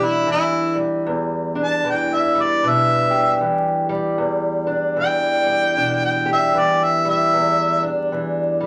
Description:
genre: acoustic country blues, solo or duo.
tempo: 77 BPM.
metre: 4/4.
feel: swing 61% on 8ths.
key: E minor.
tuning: A4 = 441 Hz.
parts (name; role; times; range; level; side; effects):
clear harmonica; melody; 0.0-7.8 s; E4 to A5; -20 LUFS; equal; none.
fingerpicked steel-string acoustic guitar; accompaniment; 0.0-8.7 s; E2 to G4; -22 LUFS; equal; none.
room: wet studio ambience, RT60 0.5 s.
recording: vinyl crackle.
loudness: -19 LUFS.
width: mono.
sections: 0.0-8.7 A section.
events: harmonica solo 0.0-8.7.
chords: 0.0 Em7.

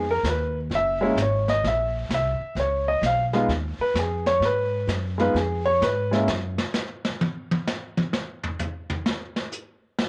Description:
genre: jazz piano trio.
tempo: 129 BPM.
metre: 4/4.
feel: swing 66% on 8ths.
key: Db mixolydian.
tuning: A4 = 437 Hz.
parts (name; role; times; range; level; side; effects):
clear grand piano; melody; 0.0-6.3 s; Ab3 to F5; -25 LUFS; equal; none.
upright bass; bass; 0.0-6.6 s; Gb1 to Ab2; -30 LUFS; equal; none.
vintage brush drum kit; drums; 0.2-10.1 s; brushed snare drum, hi-hat, snare drum, toms; -31 LUFS; equal; none.
room: light reverb.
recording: home recording on cassette.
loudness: -25 LUFS.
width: mono.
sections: 0.0-10.1 A section.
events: grand piano solo 0.0-10.1; drum solo 6.3-10.1.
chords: 0.0 Db9 (rootless); 0.7 Gb9; 2.6 Db9; 4.4 Abm7; 5.3 Db; 6.3 N.C..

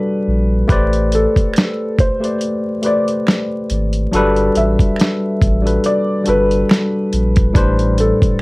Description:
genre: lo-fi hip hop.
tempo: 70 BPM.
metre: 4/4.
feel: swing 56% on 16ths.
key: A dorian.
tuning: A4 = 440 Hz.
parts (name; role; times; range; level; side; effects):
felt-muted upright piano; melody; 0.0-8.4 s; A4 to E5; -21 LUFS; equal; none.
tine electric piano; accompaniment; 0.0-8.4 s; A2 to D5; -17 LUFS; left 1 dB; cassette tape.
saturated sub bass; bass; 0.3-8.1 s; G1 to Bb1; -17 LUFS; equal; none.
dusty soul sampler-style drum kit; drums; 0.7-8.4 s; hi-hat, kick drum, snare drum; -15 LUFS; equal; overdrive, vintage 12-bit sampler grit.
finger snap; percussion; 1.5-8.4 s; none; -28 LUFS; right 5 dB; none.
room: light reverb.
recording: vinyl crackle.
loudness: -13 LUFS.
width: side -23 dB against mid.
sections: 0.0-8.4 A section.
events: none.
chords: 0.0 Em11/G (rootless); 0.7 Am11; 4.1 Em11/G; 7.6 Am11.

